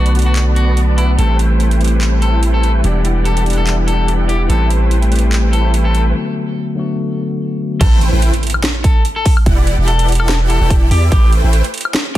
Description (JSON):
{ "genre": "future bass", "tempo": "145 BPM", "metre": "4/4", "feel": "swing 55% on 16ths, half-time", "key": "A dorian", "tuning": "A4 = 445 Hz", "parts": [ { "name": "electric guitar at the edge of break-up", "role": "melody", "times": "0.0-12.2 s", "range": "E4 to A4", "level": "-23 LUFS", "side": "left 4 dB", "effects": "sidechain pumping, ping-pong delay" }, { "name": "mellow tine electric piano", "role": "accompaniment", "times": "0.0-7.8 s", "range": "D3 to G4", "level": "-20 LUFS", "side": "left 4 dB", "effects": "sidechain pumping, digital delay" }, { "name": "supersaw chords", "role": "riff", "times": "0.0-11.6 s", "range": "E3 to A5", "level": "-22 LUFS", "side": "equal", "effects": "ensemble chorus, sidechain pumping, low-pass filter" }, { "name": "long sustained 808-style bass", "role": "bass", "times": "0.0-11.6 s", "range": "E1 to E2", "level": "-13 LUFS", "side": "equal", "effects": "tube saturation, sidechain pumping" }, { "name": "trap drum kit", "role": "drums", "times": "0.1-12.2 s", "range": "crash cymbal, handclaps, hi-hat, snare drum, woodblock", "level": "-22 LUFS", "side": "equal", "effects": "small room ambience" }, { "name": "electronic kick drum", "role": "drums", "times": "7.8-12.2 s", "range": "none", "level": "-11 LUFS", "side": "equal", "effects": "overdrive, small room ambience" }, { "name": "impact", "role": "sound effects", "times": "7.8-9.5 s", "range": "none", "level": "-21 LUFS", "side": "right 1 dB", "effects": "none" } ], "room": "light reverb", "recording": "dense, heavily limited modern master", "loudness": "-12 LUFS", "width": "side -14 dB against mid", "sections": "0.0-7.8 A section; 7.8-12.2 B section", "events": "break 6.2-7.8; drop 7.8-12.2; impact 7.8-9.5", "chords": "0.0 Bm7; 1.2 Am7; 2.8 Em7; 4.5 Am7; 6.2 Bm7; 7.8 Am7; 9.5 Em7; 11.1 Am7", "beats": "0.36 0.77 | 1.19 1.60 2.01 2.43 | 2.84 3.25 3.67 4.08 | 4.50 4.91 5.32 5.74 | 6.15 6.57 6.98 7.39 | 7.81 8.22 8.63 9.05 | 9.46 9.88 10.29 10.70 | 11.12 11.53 11.95" }